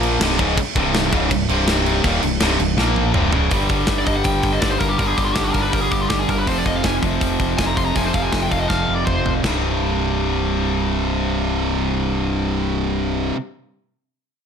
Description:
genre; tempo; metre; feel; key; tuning
heavy metal; 162 BPM; 4/4; straight; unclear; A4 = 440 Hz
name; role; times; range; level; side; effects
high-gain distorted guitar; riff; 0.0-13.4 s; C2 to Bb3; -23 LUFS; right 12 dB; distortion
tight distorted guitar; riff; 0.0-13.4 s; C2 to Bb3; -23 LUFS; left 13 dB; distortion
growling picked electric bass; bass; 0.0-13.3 s; C1 to Bb1; -24 LUFS; equal; overdrive
tight metal drum kit; drums; 0.0-9.5 s; crash cymbal, hi-hat, kick drum, snare drum, splash cymbal, toms; -22 LUFS; equal; none
nasal lead guitar with a parked wah; melody; 4.0-9.3 s; F4 to C6; -24 LUFS; left 1 dB; overdrive
room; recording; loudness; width
light reverb; none; -17 LUFS; side -7 dB against mid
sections
0.0-3.5 A section; 3.5-9.4 B section; 9.4-12.4 C section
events
drum fill 2.8-3.5, 8.7-9.4; lead electric guitar solo 3.5-9.4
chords
0.2 Cm; 2.8 Bb5; 3.1 C5; 3.5 G5; 6.5 F5; 9.4 C5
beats
0.20 | 0.57 0.94 1.31 1.67 | 2.04 2.41 2.78 3.15 | 3.52 3.88 4.25 4.62 | 4.99 5.36 5.73 6.10 | 6.47 6.84 7.21 7.58 | 7.95 8.32 8.70 9.07 | 9.44 9.81 10.18 10.56 | 10.93 11.30 11.68 12.05

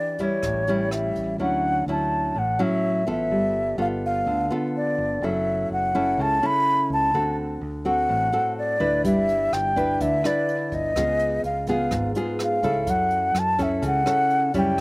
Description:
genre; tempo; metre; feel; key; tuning
bossa nova; 126 BPM; 4/4; straight; D major; A4 = 440 Hz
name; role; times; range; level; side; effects
breathy mellow concert flute; melody; 0.0-14.8 s; C#5 to B5; -23 LUFS; equal; none
nylon-string guitar; accompaniment; 0.0-14.8 s; G#2 to B4; -25 LUFS; equal; slapback echo
jazz brush drum kit; drums; 0.2-1.3, 9.0-14.8 s; hi-hat, kick drum, rim click; -35 LUFS; right 1 dB; none
fingered electric bass; bass; 0.4-14.8 s; F#1 to F#2; -31 LUFS; equal; none
room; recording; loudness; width
little or no reverb; recorded outdoors, with no room sound; -20 LUFS; side -25 dB against mid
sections
0.0-1.4 A section; 1.4-14.8 B section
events
none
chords
0.4 A7; 1.4 Dmaj9; 3.3 G9; 5.2 F#m7; 7.1 D7; 9.0 G6; 11.0 C#7; 12.9 F#m7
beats
0.43 0.91 | 1.39 1.86 2.34 2.82 | 3.30 3.78 4.26 4.74 | 5.22 5.70 6.18 6.66 | 7.13 7.61 8.09 8.57 | 9.05 9.52 10.00 10.48 | 10.96 11.44 11.91 12.39 | 12.87 13.35 13.82 14.30 | 14.78

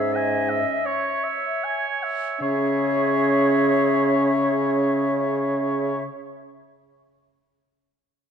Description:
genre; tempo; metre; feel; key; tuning
classical, slow romantic movement for wind quintet; 42 BPM; 4/4; rubato; C# minor; A4 = 440 Hz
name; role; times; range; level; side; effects
concert flute; melody; 0.0-6.0 s; E5; -29 LUFS; left 9 dB; none
warm oboe; second line; 0.0-6.0 s; C#5 to G#5; -27 LUFS; left 2 dB; none
bright clarinet; accompaniment; 0.0-6.0 s; G#4 to D#5; -27 LUFS; right 9 dB; none
mellow French horn; accompaniment; 0.0-6.0 s; C#4; -25 LUFS; left 3 dB; none
warm bassoon; bass; 0.0-6.0 s; G#2 to C#3; -26 LUFS; right 5 dB; none
room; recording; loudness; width
moderate concert hall reverb, RT60 1.9 s; dark, warm production; -20 LUFS; side -8 dB against mid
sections
0.0-2.4 A section; 2.4-8.1 B section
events
slowing down 0.0-2.4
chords
0.0 C#m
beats
0.84 | 2.40 3.85 5.28

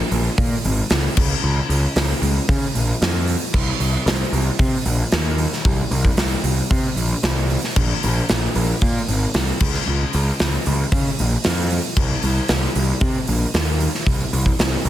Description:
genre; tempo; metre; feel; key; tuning
heavy metal; 114 BPM; 4/4; straight; unclear; A4 = 439 Hz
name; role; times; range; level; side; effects
fuzz picked electric bass; bass; 0.1-14.9 s; Ab1 to Db3; -20 LUFS; equal; overdrive
big rock drum kit; drums; 0.1-14.9 s; crash cymbal, hi-hat, kick drum, snare drum; -20 LUFS; equal; none
room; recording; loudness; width
little or no reverb; dense, heavily limited modern master; -17 LUFS; side -12 dB against mid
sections
0.0-14.9 A section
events
none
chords
none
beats
0.37 0.90 | 1.43 1.96 2.49 3.01 | 3.54 4.07 4.60 5.13 | 5.65 6.18 6.71 7.24 | 7.76 8.29 8.82 9.34 | 9.87 10.39 10.92 11.45 | 11.97 12.49 13.02 13.54 | 14.06 14.59

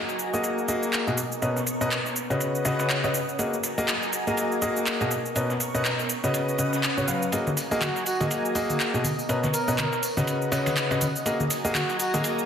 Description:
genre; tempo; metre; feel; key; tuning
piano house; 122 BPM; 4/4; swing 58% on 16ths; F# major; A4 = 440 Hz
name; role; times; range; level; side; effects
analog string pad; sustained chords; 0.0-12.5 s; B3 to D#6; -32 LUFS; right 1 dB; ensemble chorus
dusty soul sampler-style drum kit; drums; 0.1-12.4 s; ride cymbal, snare drum; -38 LUFS; right 2 dB; high-pass filter on snare, low-pass filter on snare, high-pass filter on cymbals, low-pass filter on cymbals, high-pass filter on room, low-pass filter on room
electronic cabasa and handclaps; drums; 0.1-12.5 s; none; -29 LUFS; equal; none
clear grand piano; riff; 0.3-12.5 s; B2 to E#5; -26 LUFS; left 1 dB; tape echo
tambourine and congas; percussion; 7.3-12.4 s; none; -32 LUFS; left 1 dB; none
trumpet with bucket mute; melody; 7.8-12.2 s; F#4 to A#4; -32 LUFS; right 1 dB; tape echo
room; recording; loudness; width
wet plate reverb, RT60 1.5 s, digital ambience; dense, heavily limited modern master; -23 LUFS; side -8 dB against mid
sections
0.0-12.5 A section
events
none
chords
0.0 F#69; 1.2 Bmaj9; 2.2 C#9sus4; 3.4 F#69; 5.1 Bmaj9; 6.1 C#9sus4; 7.3 F#69; 9.0 Bmaj9; 10.0 C#9sus4; 11.3 F#69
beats
0.44 0.93 | 1.42 1.91 2.41 2.90 | 3.39 3.88 4.37 4.87 | 5.36 5.85 6.34 6.83 | 7.32 7.82 8.31 8.80 | 9.29 9.78 10.28 10.77 | 11.26 11.75 12.24

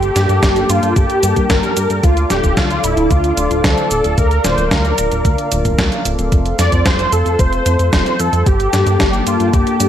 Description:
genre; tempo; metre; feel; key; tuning
italo disco; 112 BPM; 4/4; straight; unclear; A4 = 435 Hz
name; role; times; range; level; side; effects
wide unison lead; melody; 0.0-9.9 s; E4 to D5; -17 LUFS; equal; ensemble chorus, digital delay
warm analog pad; sustained chords; 0.0-9.9 s; Bb3 to D6; -22 LUFS; left 1 dB; chorus
chorused synth bass; bass; 0.0-9.9 s; D1 to G2; -18 LUFS; equal; tube saturation
clean 12-bit digital drum machine; drums; 0.0-9.9 s; cabasa, hi-hat, snare drum; -20 LUFS; equal; small room ambience, gated reverb
mellow synth brass; stabs; 0.2-9.9 s; G2 to C5; -23 LUFS; left 3 dB; chorus
electronic kick drum; drums; 0.4-9.6 s; none; -16 LUFS; equal; small room ambience
room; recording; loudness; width
light reverb, digital ambience; none; -12 LUFS; side -10 dB against mid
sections
0.0-9.9 A section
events
none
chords
0.0 Gmadd9; 2.0 Dm; 4.2 Bb/D; 6.3 F; 8.5 Gmadd9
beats
0.43 0.96 1.50 | 2.04 2.57 3.11 3.64 | 4.18 4.71 5.25 5.79 | 6.32 6.86 7.39 7.93 | 8.46 9.00 9.54

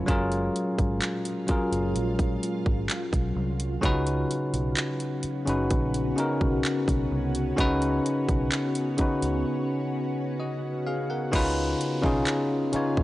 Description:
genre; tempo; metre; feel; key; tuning
contemporary R&B; 64 BPM; 4/4; straight; unclear; A4 = 443 Hz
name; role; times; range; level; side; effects
bell-like tine electric piano; accompaniment; 0.0-13.0 s; C#3 to F#5; -26 LUFS; left 1 dB; none
ethereal airy pad; sustained chords; 0.0-13.0 s; A#2 to F#4; -34 LUFS; equal; ensemble chorus, built-in reverb, phaser
vintage muted fingered electric bass; bass; 0.1-13.0 s; F#1 to C#2; -30 LUFS; equal; none
trap drum kit; drums; 0.1-13.0 s; crash cymbal, handclaps, hi-hat, kick drum; -28 LUFS; equal; none
downlifter; sound effects; 11.3-13.0 s; none; -40 LUFS; right 2 dB; none
room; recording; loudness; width
little or no reverb; dry, gritty hardware recording, transformer saturation, nothing above 10.9 kHz; -24 LUFS; side -16 dB against mid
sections
0.0-11.3 A section; 11.3-13.0 B section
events
break 9.5-11.3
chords
0.1 F#maj9; 3.8 C#7sus4; 11.3 C#7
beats
| 0.08 1.02 1.96 2.89 | 3.83 4.77 5.71 6.64 | 7.58 8.52 9.46 10.39 | 11.33 12.27

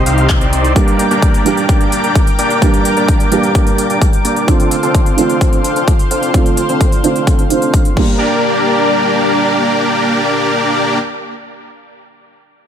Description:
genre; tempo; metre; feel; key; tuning
EDM, festival progressive house; 129 BPM; 4/4; straight; G minor; A4 = 440 Hz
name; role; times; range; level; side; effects
felt-muted upright piano; accompaniment; 0.0-12.7 s; G2 to G4; -18 LUFS; right 5 dB; sidechain pumping, tape echo
lush unison pad; sustained chords; 0.0-11.0 s; G3 to D6; -19 LUFS; left 2 dB; chorus, sidechain pumping
dense compressed supersaw; riff; 0.0-11.0 s; Bb3 to F5; -16 LUFS; equal; sidechain pumping, low-pass filter, tape echo
wide detuned saw bass; bass; 0.0-0.7 s; C2; -14 LUFS; equal; chorus, sidechain pumping
big-room dance drum kit; drums; 0.1-8.1 s; crash cymbal, handclaps, hi-hat; -23 LUFS; left 1 dB; none
electronic kick drum; drums; 0.3-8.1 s; none; -12 LUFS; left 1 dB; none
room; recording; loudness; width
light reverb, digital ambience; none; -10 LUFS; side -9 dB against mid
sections
0.0-8.2 A section; 8.2-11.9 B section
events
filter sweep on supersaw synth 0.0-8.2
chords
0.0 Cm; 0.8 Gm; 4.5 Dm7; 8.0 Gm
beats
0.29 | 0.76 1.22 1.69 2.15 | 2.62 3.08 3.55 4.01 | 4.48 4.95 5.41 5.88 | 6.34 6.81 7.27 7.74 | 8.20 8.67 9.13 9.60 | 10.06 10.53 10.99 11.46

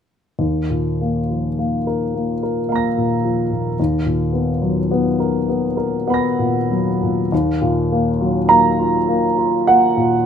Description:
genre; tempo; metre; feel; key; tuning
classical, impressionist solo piano; 47-56 BPM; 3/4; rubato; Eb minor; A4 = 440 Hz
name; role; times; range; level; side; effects
clear grand piano; solo; 0.4-10.3 s; Eb2 to Bb6; -16 LUFS; equal; none
room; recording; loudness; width
light reverb; none; -16 LUFS; side -8 dB against mid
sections
0.4-7.3 A section; 7.3-10.3 B section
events
none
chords
0.4 Ebsus2; 3.8 Bmaj7/D#; 7.3 Ebmadd9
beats
| 0.40 1.59 2.71 | 3.79 4.91 6.08 | 7.31 8.49 9.67

